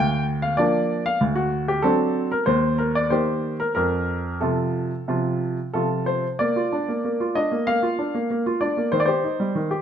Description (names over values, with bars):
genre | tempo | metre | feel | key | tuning
classical-period piano sonatina | 93 BPM | 4/4 | uneven beats, rubato | Bb major | A4 = 440 Hz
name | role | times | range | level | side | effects
bright baby grand piano | solo | 0.0-9.8 s | D2 to G5 | -20 LUFS | equal | none
room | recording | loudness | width
moderate recital hall reverb, RT60 1.4 s | close, detailed microphones | -20 LUFS | side -8 dB against mid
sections
0.0-6.4 A section; 6.4-9.8 B section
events
none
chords
0.0 Bb/D; 1.2 D7; 2.5 Eb; 3.8 F; 6.4 Bb; 8.9 Cm/Eb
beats
0.59 | 1.22 1.84 2.48 3.12 | 3.77 4.42 5.09 5.75 | 6.41 7.05 7.68 8.30 | 8.93 9.55